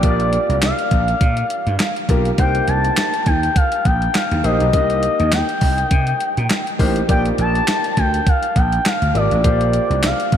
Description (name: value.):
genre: early-eighties boogie funk.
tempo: 102 BPM.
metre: 4/4.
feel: swing 56% on 16ths.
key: unclear.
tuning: A4 = 440 Hz.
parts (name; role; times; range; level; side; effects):
expressive portamento lead; melody; 0.0-10.4 s; D5 to A5; -20 LUFS; left 2 dB; chorus, ping-pong delay.
warm grand piano; accompaniment; 0.0-10.1 s; Bb3 to Eb5; -24 LUFS; left 1 dB; none.
vintage slap bass; bass; 0.0-10.4 s; Ab1 to C3; -19 LUFS; right 1 dB; none.
crisp 8-bit digital drum machine; drums; 0.0-10.4 s; handclaps, hi-hat, kick drum, snare drum; -20 LUFS; right 1 dB; none.
room: moderate cathedral reverb, RT60 6.1 s.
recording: dreamy mix soaked in reverb.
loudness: -15 LUFS.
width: side -9 dB against mid.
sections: 0.0-10.4 A section.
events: none.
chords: 0.0 Bb6; 2.4 Cm7; 7.1 Bb6.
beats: | 0.03 0.62 1.21 1.79 | 2.38 2.97 3.56 4.15 | 4.74 5.32 5.91 6.50 | 7.09 7.68 8.27 8.85 | 9.44 10.03.